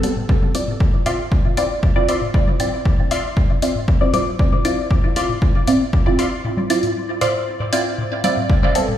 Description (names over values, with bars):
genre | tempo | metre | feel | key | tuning
dub techno | 117 BPM | 4/4 | straight | unclear | A4 = 442 Hz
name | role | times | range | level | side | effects
filtered dub chord stab | stabs | 0.0-8.9 s | G3 to D5 | -20 LUFS | right 1 dB | phaser, sidechain pumping, dub echo
electronic hi-hat | drums | 0.0-8.9 s | none | -29 LUFS | left 2 dB | overdrive
electronic congas and toms | percussion | 0.0-9.0 s | none | -27 LUFS | left 2 dB | sidechain pumping on toms, sidechain pumping on perc, dub echo
electronic kick drum | drums | 0.3-8.6 s | none | -17 LUFS | equal | none
filtered dub chord stab | riff | 1.1-7.3 s | D5 to C6 | -30 LUFS | left 2 dB | chorus, sidechain pumping, dub echo
room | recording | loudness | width
moderate spring reverb, RT60 1.7 s | played on a big sound system in a bare room, stone room reverb | -16 LUFS | side -11 dB against mid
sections
0.0-8.5 A section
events
filter sweep on synth stab 0.0-8.5; break 6.4-8.5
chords
0.3 Dm9